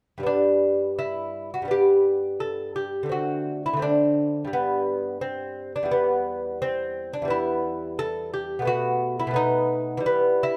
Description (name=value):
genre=classical, baroque-style dance for lute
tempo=86 BPM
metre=4/4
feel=rubato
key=G major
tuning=A4 = 440 Hz
part: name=lute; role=solo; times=0.2-10.6 s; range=E2 to A4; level=-25 LUFS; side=equal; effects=none
room=light reverb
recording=close, detailed microphones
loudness=-25 LUFS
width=mono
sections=0.3-10.6 A section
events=none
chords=0.3 G; 3.1 D5; 4.5 N.C.; 5.9 Em; 8.7 B7